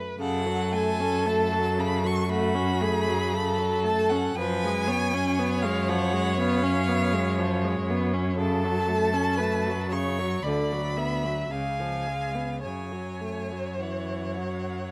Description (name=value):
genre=classical, slow romantic movement for string quartet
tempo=58 BPM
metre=4/4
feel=uneven beats, rubato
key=F# minor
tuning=A4 = 440 Hz
part: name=rich violin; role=second line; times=0.0-14.9 s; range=F#4 to E#5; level=-32 LUFS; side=equal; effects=none
part: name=rich violin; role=melody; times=0.2-14.9 s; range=E#5 to C#6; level=-35 LUFS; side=equal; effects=none
part: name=rich viola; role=accompaniment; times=0.2-14.9 s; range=C#3 to C#4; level=-32 LUFS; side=equal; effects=none
part: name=rich cello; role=bass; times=0.2-14.9 s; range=C#2 to F#2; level=-31 LUFS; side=equal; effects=none
room=light reverb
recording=close, detailed microphones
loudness=-26 LUFS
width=mono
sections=0.2-14.9 A section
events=none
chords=0.2 F#m; 4.4 C#7/F#; 8.4 F#m; 10.4 Bm/D; 11.5 C#7; 12.6 F#m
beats=| 0.19 1.25 2.29 3.33 | 4.36 5.37 6.38 7.38 | 8.38 9.38 10.43 11.51 | 12.64 13.80